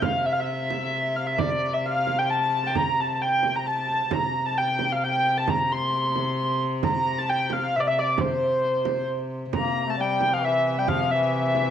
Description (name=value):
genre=medieval dance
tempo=133 BPM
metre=3/4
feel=straight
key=C mixolydian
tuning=A4 = 439 Hz
part: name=dark hurdy-gurdy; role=melody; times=0.0-11.7 s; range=C5 to C6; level=-23 LUFS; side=equal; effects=slapback echo
part: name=dark viola da gamba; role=drone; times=0.0-11.7 s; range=C3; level=-30 LUFS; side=left 1 dB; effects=none
part: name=frame drum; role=percussion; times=0.0-11.7 s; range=none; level=-30 LUFS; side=right 8 dB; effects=none
part: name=clear duduk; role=second line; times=9.5-11.7 s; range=E3 to Bb3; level=-28 LUFS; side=left 8 dB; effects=none
room=moderate echo chamber reverb, RT60 2.2 s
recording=1960s-style stereo with parts hard left and right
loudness=-22 LUFS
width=side -9 dB against mid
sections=0.0-9.5 A section; 9.5-11.7 A section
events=none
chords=none